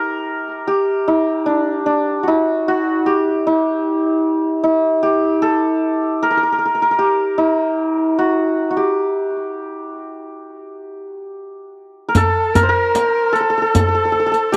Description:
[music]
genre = Persian modal ensemble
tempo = 76 BPM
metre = 4/4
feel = straight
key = G avaz esfahan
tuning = A4 = 441 Hz
[part]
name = santur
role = melody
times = 0.0-14.6 s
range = D4 to C5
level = -18 LUFS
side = equal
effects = none
[part]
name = riq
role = percussion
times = 12.1-14.6 s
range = none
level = -24 LUFS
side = equal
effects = none
[part]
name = warm kamancheh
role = second line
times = 12.2-14.6 s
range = A4 to Bb4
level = -20 LUFS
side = equal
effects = none
[part]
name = tombak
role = percussion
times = 12.2-14.6 s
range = none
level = -21 LUFS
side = equal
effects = none
[sound]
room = little or no reverb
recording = dry, close 1970s-style studio recording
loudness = -17 LUFS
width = mono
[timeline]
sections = 0.0-12.2 A section; 12.2-14.6 B section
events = none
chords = none

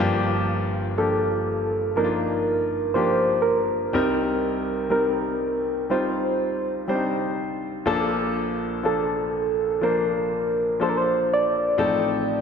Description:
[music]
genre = pop ballad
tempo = 61 BPM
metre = 4/4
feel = straight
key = Bb major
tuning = A4 = 439 Hz
[part]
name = clear concert grand piano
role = accompaniment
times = 0.0-12.4 s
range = G1 to C5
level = -24 LUFS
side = left 2 dB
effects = none
[part]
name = soft struck synth lead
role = melody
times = 1.0-12.4 s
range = A4 to D5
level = -23 LUFS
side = right 1 dB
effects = chorus
[sound]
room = wet lush hall reverb, RT60 2.1 s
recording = dreamy mix soaked in reverb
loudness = -21 LUFS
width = side -6 dB against mid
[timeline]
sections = 0.0-12.4 A section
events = none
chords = 0.0 Gm7; 3.9 Cm7; 7.9 Bbmaj7; 11.8 F7/A

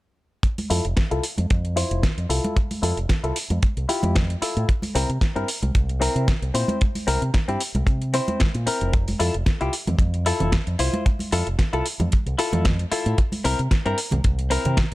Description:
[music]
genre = nu-disco, nu disco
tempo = 113 BPM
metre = 4/4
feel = swing 54% on 16ths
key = F major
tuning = A4 = 440 Hz
[part]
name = kick drum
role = drums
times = 0.4-14.9 s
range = none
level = -20 LUFS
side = equal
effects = none
[part]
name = pop drum kit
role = drums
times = 0.4-14.9 s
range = hi-hat, snare drum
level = -28 LUFS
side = right 1 dB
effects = none
[part]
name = congas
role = percussion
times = 0.6-14.8 s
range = none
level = -29 LUFS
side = right 1 dB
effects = none
[part]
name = direct-recorded clean electric guitar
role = riff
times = 0.7-14.8 s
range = C4 to C5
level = -26 LUFS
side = left 2 dB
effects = wide subtle chorus, vintage 12-bit sampler grit, low-pass filter
[part]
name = fingered electric bass with an envelope filter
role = bass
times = 0.7-14.9 s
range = F1 to C3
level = -24 LUFS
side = equal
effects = none
[sound]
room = small room ambience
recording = none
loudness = -20 LUFS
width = side -18 dB against mid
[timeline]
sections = 0.4-14.9 A section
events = filter sweep on clean electric guitar 0.4-14.9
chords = 0.4 Fmaj7; 4.7 C7; 8.9 Fmaj7; 13.2 C7

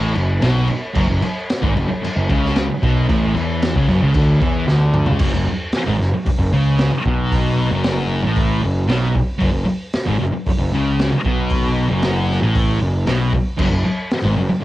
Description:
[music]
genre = garage rock duo or trio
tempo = 114 BPM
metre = 4/4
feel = straight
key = F# minor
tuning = A4 = 440 Hz
[part]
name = thick fuzz guitar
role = riff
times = 0.0-14.6 s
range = F#2 to E3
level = -19 LUFS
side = equal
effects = distortion, cassette tape
[part]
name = fuzz picked electric bass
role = bass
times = 0.0-14.5 s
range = F#1 to E2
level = -20 LUFS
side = equal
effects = overdrive
[part]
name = raw garage drum kit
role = drums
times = 0.1-14.2 s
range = crash cymbal, hi-hat, kick drum, snare drum, toms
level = -21 LUFS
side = equal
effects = cassette tape
[sound]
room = little or no reverb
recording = home recording on cassette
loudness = -15 LUFS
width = side -16 dB against mid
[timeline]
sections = 0.0-5.2 A section; 5.2-14.6 B section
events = drum fill 4.7-5.2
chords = 0.0 F#m

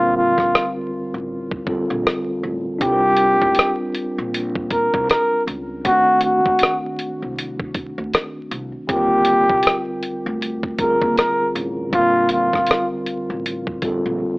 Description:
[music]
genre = lo-fi hip hop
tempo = 79 BPM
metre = 4/4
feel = swing 60% on 16ths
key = Bb major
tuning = A4 = 440 Hz
[part]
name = breathy flugelhorn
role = melody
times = 0.0-12.9 s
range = F4 to Bb4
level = -17 LUFS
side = equal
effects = none
[part]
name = mellow tine electric piano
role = accompaniment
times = 0.0-14.4 s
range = Eb2 to Bb4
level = -24 LUFS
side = equal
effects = medium stereo tremolo
[part]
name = upright bass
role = bass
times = 0.0-14.2 s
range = A1 to Eb2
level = -28 LUFS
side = equal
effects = none
[part]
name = dusty soul sampler-style drum kit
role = drums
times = 0.4-14.0 s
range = hi-hat, kick drum, rim click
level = -20 LUFS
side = equal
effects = none
[sound]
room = moderate studio reverb, RT60 0.6 s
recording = dry, gritty hardware recording, vinyl crackle, AM radio sound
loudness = -17 LUFS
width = side -27 dB against mid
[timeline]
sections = 0.0-14.4 A section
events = break 0.0-2.8; silent gap 14.2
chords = 0.0 Bbmaj9; 2.8 Csus2; 5.8 D7b9; 8.9 Eb69; 11.9 Bbmaj9

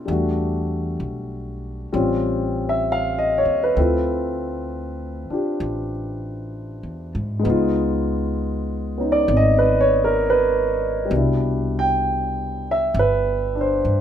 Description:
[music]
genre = jazz ballad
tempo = 66 BPM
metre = 4/4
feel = swing 66% on 8ths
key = unclear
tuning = A4 = 441 Hz
[part]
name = warm concert grand piano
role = accompaniment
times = 0.0-14.0 s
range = B2 to G5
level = -20 LUFS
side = equal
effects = none
[part]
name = upright bass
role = bass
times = 0.0-14.0 s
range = G1 to Ab2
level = -25 LUFS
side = equal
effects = none
[sound]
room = light reverb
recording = minimal, uncompressed stereo recording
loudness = -19 LUFS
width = side -9 dB against mid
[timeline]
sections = 0.0-14.0 A section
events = none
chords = 0.1 Em11; 1.9 A7alt; 3.8 Dm9; 7.4 Db9; 11.1 Cmaj9

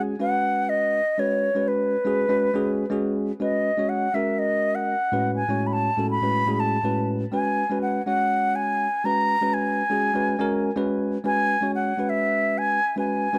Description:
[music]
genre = jazz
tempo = 122 BPM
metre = 4/4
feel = straight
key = G# minor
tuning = A4 = 441 Hz
[part]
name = mellow silver concert flute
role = melody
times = 0.0-13.4 s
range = B4 to B5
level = -26 LUFS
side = equal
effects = plate reverb
[part]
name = bell-like tine electric piano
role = accompaniment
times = 0.0-13.4 s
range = A2 to C#5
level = -28 LUFS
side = equal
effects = plate reverb
[sound]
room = moderate club ambience, RT60 0.5 s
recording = none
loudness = -24 LUFS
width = mono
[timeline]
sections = 0.0-13.4 A section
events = none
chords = 0.0 G#m7; 3.4 C#sus2; 5.1 Amaj9; 7.3 G#m7

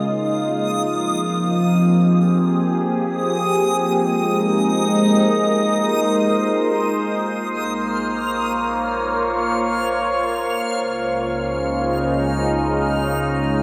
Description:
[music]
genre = ambient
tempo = free time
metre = none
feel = none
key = Bb dorian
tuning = A4 = 441 Hz
[part]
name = evolving wavetable pad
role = sustained chords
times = 0.0-13.6 s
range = Db3 to Db5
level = -20 LUFS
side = equal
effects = phaser, built-in reverb
[part]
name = bowed-like drone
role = drone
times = 0.0-7.3 s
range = Bb3 to F4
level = -32 LUFS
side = equal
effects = built-in reverb
[part]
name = backwards swelling texture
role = texture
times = 0.0-13.6 s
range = Eb6 to F6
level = -30 LUFS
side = equal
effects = built-in reverb
[part]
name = warm sub bass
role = bass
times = 7.2-13.6 s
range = Bb1 to Db2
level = -38 LUFS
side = equal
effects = none
[sound]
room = wet huge ambient reverb, RT60 7.8 s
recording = in a vast, echoing space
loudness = -20 LUFS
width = mono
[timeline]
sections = 0.0-7.2 A section; 7.2-13.6 B section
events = fade-in on synth drone 0.0-7.2; fade-in on sub bass 7.2-13.6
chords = 0.3 Fm7; 3.8 Abmaj7; 7.2 Bbm; 10.7 Db

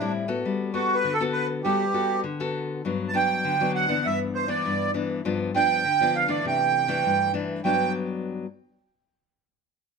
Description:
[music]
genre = samba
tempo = 100 BPM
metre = 4/4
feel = straight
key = G major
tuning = A4 = 442 Hz
[part]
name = accordion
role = melody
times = 0.0-7.9 s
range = D4 to A5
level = -23 LUFS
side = right 6 dB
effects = light tremolo tuning
[part]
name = nylon-string guitar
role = accompaniment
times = 0.0-8.5 s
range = G2 to A4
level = -27 LUFS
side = left 5 dB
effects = none
[sound]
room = light reverb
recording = close, detailed microphones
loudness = -22 LUFS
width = side -4 dB against mid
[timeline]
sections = 0.0-2.9 A section; 2.9-7.6 B section; 7.6-10.0 C section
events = none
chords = 0.5 Gmaj9; 2.9 Gmaj7; 4.1 Em7/G; 5.2 G7; 6.4 C69; 7.6 Gmaj7

